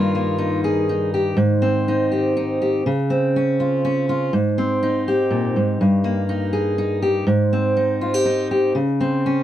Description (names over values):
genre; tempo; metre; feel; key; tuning
folk; 122 BPM; 3/4; straight; Ab major; A4 = 440 Hz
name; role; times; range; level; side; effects
fingerpicked steel-string acoustic guitar; solo; 0.0-9.4 s; G2 to Ab4; -17 LUFS; equal; none
room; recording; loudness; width
little or no reverb; dry, close 1970s-style studio recording; -17 LUFS; side -12 dB against mid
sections
0.0-9.4 A section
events
none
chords
0.0 Ebadd9/G; 1.4 Abmaj7; 2.8 Dbmaj7; 4.3 Abmaj7; 5.8 Eb/G; 7.3 Abmaj7; 8.7 Dbmaj7(no3)